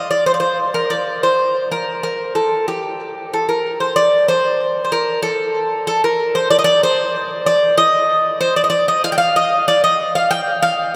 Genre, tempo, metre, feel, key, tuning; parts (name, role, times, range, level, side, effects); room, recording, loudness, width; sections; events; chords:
greek folk; 94 BPM; 2/4; straight; A4 = 440 Hz
Greek bouzouki; solo; 0.0-10.9 s; G4 to G5; -17 LUFS; equal; tape echo
wet cathedral reverb, RT60 6.3 s; in a vast, echoing space; -17 LUFS; mono
0.0-4.0 A section; 4.0-11.0 B section